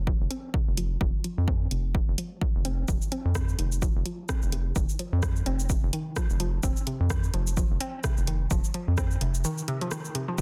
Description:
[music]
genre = minimal techno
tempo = 128 BPM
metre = 4/4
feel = swing 57% on 16ths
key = unclear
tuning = A4 = 445 Hz
[part]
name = rubbery square bass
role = bass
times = 0.0-10.4 s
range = F1 to F2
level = -30 LUFS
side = equal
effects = sidechain pumping
[part]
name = hollow square pluck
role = riff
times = 0.1-10.4 s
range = C3 to C4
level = -37 LUFS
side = equal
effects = chorus, phaser, sidechain pumping, digital delay
[part]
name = electronic kick drum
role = drums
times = 0.1-10.4 s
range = none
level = -30 LUFS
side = equal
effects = overdrive
[part]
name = punchy analog drum machine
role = drums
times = 0.3-10.4 s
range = cabasa, hi-hat, rim click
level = -38 LUFS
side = equal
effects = overdrive
[sound]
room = little or no reverb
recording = dense, heavily limited modern master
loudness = -28 LUFS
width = mono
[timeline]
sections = 0.0-10.4 A section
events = filter sweep on synth arpeggio sound 0.0-10.4; break 9.4-10.4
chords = 0.0 F5

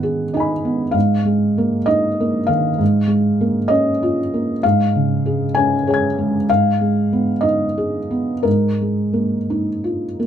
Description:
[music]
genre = neoclassical minimalist piano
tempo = 56-67 BPM (dotted quarters)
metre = 6/8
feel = rubato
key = G# dorian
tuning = A4 = 440 Hz
[part]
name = felt-muted upright piano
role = solo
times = 0.0-10.3 s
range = G#2 to G#6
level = -16 LUFS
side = equal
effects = none
[sound]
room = light reverb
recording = close, detailed microphones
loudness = -16 LUFS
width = side -9 dB against mid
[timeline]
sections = 0.0-10.3 A section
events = none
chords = 0.0 G#m; 0.9 D#sus2/G#; 2.8 A#m/G#; 4.6 C#/G#; 6.5 G#m; 8.5 D#sus2/G#

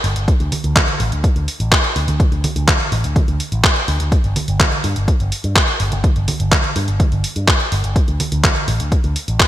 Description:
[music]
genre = italo disco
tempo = 125 BPM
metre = 4/4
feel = straight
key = unclear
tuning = A4 = 440 Hz
[part]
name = picked electric bass with an envelope filter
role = bass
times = 0.0-9.4 s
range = G1 to G2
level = -19 LUFS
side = equal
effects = none
[part]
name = detuned 8-bit digital drum machine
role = drums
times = 0.0-9.5 s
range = congas, handclaps, hi-hat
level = -18 LUFS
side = right 1 dB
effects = gated reverb
[part]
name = electronic kick drum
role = drums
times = 0.3-9.5 s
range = none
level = -15 LUFS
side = equal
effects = overdrive
[sound]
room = light reverb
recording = bright 1980s-style digital production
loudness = -14 LUFS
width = side -13 dB against mid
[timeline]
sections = 0.0-9.5 A section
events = none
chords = none

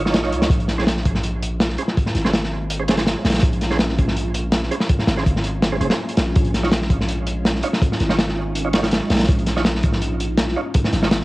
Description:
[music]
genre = drum and bass, jungle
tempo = 164 BPM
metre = 4/4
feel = straight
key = Bb minor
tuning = A4 = 438 Hz
[part]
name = percussive tonewheel organ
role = stabs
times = 0.0-11.1 s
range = Db4 to Db5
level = -27 LUFS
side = right 4 dB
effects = chorus vibrato, fast rotary speaker, cassette tape, dub echo
[part]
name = long sustained 808-style bass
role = bass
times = 0.0-11.2 s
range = F1 to Db2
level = -23 LUFS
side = equal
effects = none
[part]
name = crunchy breakbeat drum kit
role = drums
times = 0.1-11.2 s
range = hi-hat, kick drum, snare drum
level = -19 LUFS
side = equal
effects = cassette tape
[part]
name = ethereal airy pad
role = sustained chords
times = 1.4-11.2 s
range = Ab3 to F4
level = -30 LUFS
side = equal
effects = ensemble chorus, built-in reverb, phaser, cassette tape
[sound]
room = light reverb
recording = home recording on cassette, vinyl crackle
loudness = -17 LUFS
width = side -20 dB against mid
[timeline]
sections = 0.0-11.2 A section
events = none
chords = 0.0 Dbadd9; 0.5 Bbm7; 6.4 Dbadd9

